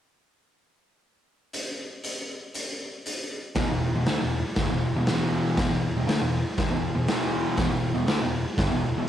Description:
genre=garage rock duo or trio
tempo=119 BPM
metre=4/4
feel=straight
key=E minor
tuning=A4 = 440 Hz
part: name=raw garage drum kit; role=drums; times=1.5-8.7 s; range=hi-hat, kick drum, snare drum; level=-28 LUFS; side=equal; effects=cassette tape
part: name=fuzz guitar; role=riff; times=3.6-9.1 s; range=E2 to A3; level=-25 LUFS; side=equal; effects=distortion, cassette tape
room=light reverb, small room ambience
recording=home recording on cassette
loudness=-24 LUFS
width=side -10 dB against mid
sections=1.5-3.6 A section; 3.6-9.1 B section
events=none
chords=1.5 N.C.; 3.6 E5

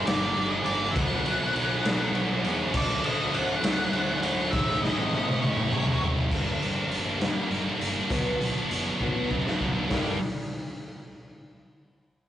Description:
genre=quiet-loud alternative rock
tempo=67 BPM (dotted quarters)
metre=6/8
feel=straight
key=unclear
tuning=A4 = 436 Hz
part: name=octave-fuzz lead guitar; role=melody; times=0.0-6.0 s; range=C#5 to F#5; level=-30 LUFS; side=left 1 dB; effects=distortion
part: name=scooped high-gain guitar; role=riff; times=0.0-10.2 s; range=G2 to E4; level=-28 LUFS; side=right 1 dB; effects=distortion
part: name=fuzz fingered electric bass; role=bass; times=0.0-10.2 s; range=F#1 to G2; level=-36 LUFS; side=equal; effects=overdrive
part: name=raw garage drum kit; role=drums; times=0.1-10.1 s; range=crash cymbal, hi-hat, kick drum, ride cymbal, snare drum, toms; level=-28 LUFS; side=equal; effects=none
part: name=picked steel-string acoustic guitar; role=arpeggios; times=6.3-10.2 s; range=G2 to G4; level=-34 LUFS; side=left 2 dB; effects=slapback echo
room=light reverb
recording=rough rehearsal-room recording, warm saturation, nothing above 10.3 kHz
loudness=-24 LUFS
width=side -12 dB against mid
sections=0.0-6.3 A section; 6.3-9.9 B section; 9.9-11.7 C section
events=drum fill 4.5-6.3, 9.0-9.9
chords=0.0 Gm; 1.0 Bm; 2.7 D; 4.5 A; 6.3 Gm; 8.1 Bm; 9.9 Gm

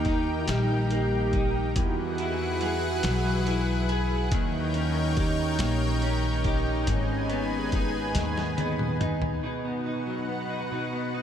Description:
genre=six-eight pop ballad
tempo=47 BPM (dotted quarters)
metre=6/8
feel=straight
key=unclear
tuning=A4 = 441 Hz
part: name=mellow French horn section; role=second line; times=0.0-9.4 s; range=B3 to G4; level=-33 LUFS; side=right 3 dB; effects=diffuse ambient delay
part: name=direct-recorded clean electric guitar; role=accompaniment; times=0.0-11.2 s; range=G#2 to G#4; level=-31 LUFS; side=equal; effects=double-tracked left and right
part: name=lush unison pad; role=sustained chords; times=0.0-11.2 s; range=D#4 to G#5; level=-31 LUFS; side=left 1 dB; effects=chorus
part: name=upright bass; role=bass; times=0.0-9.4 s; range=G#1 to E2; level=-29 LUFS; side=equal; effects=none
part: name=lo-fi sampler-style drum kit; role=drums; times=0.0-9.4 s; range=hi-hat, kick drum, snare drum, toms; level=-31 LUFS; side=equal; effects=none
room=moderate huge ambient reverb, RT60 8.5 s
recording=dreamy mix soaked in reverb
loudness=-24 LUFS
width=side -9 dB against mid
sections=0.0-9.4 A section; 9.4-11.2 B section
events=drum fill 8.2-9.4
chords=0.0 D#; 1.8 Eadd9; 4.3 D#7; 6.9 G#m; 9.4 B

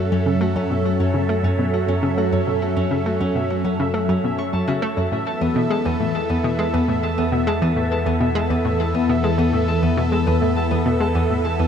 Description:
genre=ambient, sequencer-driven space music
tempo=102 BPM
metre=4/4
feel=straight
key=unclear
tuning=A4 = 440 Hz
part: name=phased analog pad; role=sustained chords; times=0.0-11.7 s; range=E3 to A4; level=-23 LUFS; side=equal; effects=phaser, chorus
part: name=Celtic harp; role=arpeggios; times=0.0-11.7 s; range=B3 to C#6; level=-25 LUFS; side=moving between left 4 dB and right 4 dB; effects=auto-pan, ping-pong delay
part: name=round analog bass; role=bass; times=0.0-11.7 s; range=E2 to F#2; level=-25 LUFS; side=equal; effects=none
part: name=pulsing gated texture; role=texture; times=0.0-11.7 s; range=E5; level=-30 LUFS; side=right 1 dB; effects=chorus, built-in reverb
part: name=analog pluck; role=riff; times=0.1-11.7 s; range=E2 to A3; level=-23 LUFS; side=left 1 dB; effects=chorus, ping-pong delay
room=moderate huge ambient reverb, RT60 7.7 s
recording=none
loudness=-18 LUFS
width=side -8 dB against mid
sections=0.0-11.7 A section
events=none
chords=0.0 F#m; 5.1 Esus4

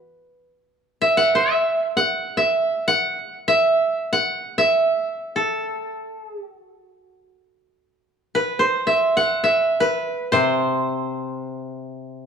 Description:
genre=japanese traditional, Japanese chamber music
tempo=free time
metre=none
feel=none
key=unclear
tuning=A4 = 440 Hz
part: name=koto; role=accompaniment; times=0.0-0.5, 10.3-12.3 s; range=C3 to B4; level=-23 LUFS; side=left 3 dB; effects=none
part: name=koto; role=melody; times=1.0-12.0 s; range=A4 to F#5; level=-18 LUFS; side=right 1 dB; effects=none
room=light reverb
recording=dark, warm production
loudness=-18 LUFS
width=side -7 dB against mid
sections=0.0-7.5 A section; 7.5-12.3 A section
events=none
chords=none

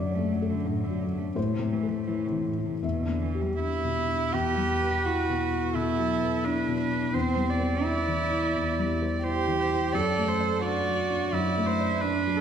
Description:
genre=neoclassical piano and strings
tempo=86 BPM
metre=4/4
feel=rubato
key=E minor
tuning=A4 = 436 Hz
part: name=warm cello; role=second line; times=0.0-12.4 s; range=A2 to A4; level=-29 LUFS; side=right 4 dB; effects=none
part: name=felt-muted upright piano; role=accompaniment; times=0.0-12.4 s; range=E2 to F#5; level=-27 LUFS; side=left 3 dB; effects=none
part: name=warm viola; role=accompaniment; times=4.3-12.4 s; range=A4 to D5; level=-31 LUFS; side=right 3 dB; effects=none
room=wet recital hall reverb, RT60 1.8 s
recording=recorded in a church or concert hall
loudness=-24 LUFS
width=side -8 dB against mid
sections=0.0-4.3 A section; 4.3-12.4 A section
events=none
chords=0.0 D/F#; 1.4 Am; 2.8 Em7; 4.3 Emadd9; 7.1 C/E; 9.9 D/F#

